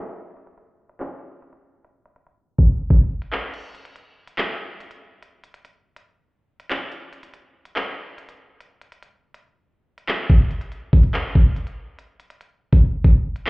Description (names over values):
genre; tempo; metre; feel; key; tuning
hip hop; 142 BPM; 4/4; half-time; none; none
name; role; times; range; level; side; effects
drill drum kit; drums; 0.2-13.5 s; crash cymbal, handclaps, hi-hat, kick drum; -16 LUFS; equal; vintage 12-bit sampler grit
room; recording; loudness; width
digital ambience; heard muffled through a wall, club reverb, EQ, low-pass filter; -17 LUFS; side -26 dB against mid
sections
0.0-3.5 A section; 3.5-13.5 B section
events
filter sweep 0.0-3.5; break 3.5-10.3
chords
none